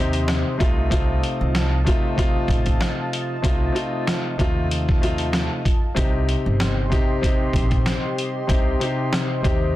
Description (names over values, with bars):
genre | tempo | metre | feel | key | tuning
hip hop, boom-bap hip-hop | 95 BPM | 4/4 | swing 55% on 16ths | unclear | A4 = 441 Hz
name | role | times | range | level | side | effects
dark grand piano | accompaniment | 0.0-9.8 s | C3 to G4 | -24 LUFS | left 2 dB | cassette tape, high-pass filter, low-pass filter
dark analog pad | sustained chords | 0.0-9.8 s | F4 to C6 | -31 LUFS | right 2 dB | chorus, high-pass filter, low-pass filter
upright bass | bass | 0.0-9.8 s | G1 to Eb2 | -24 LUFS | equal | none
trip hop sampler-style drum kit | drums | 0.1-9.6 s | hi-hat, kick drum, rim click, snare drum | -22 LUFS | equal | none
room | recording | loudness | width
digital ambience | dense, heavily limited modern master | -19 LUFS | side -15 dB against mid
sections
0.0-9.8 A section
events
none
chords
0.0 Cm; 0.6 F7; 6.0 Cm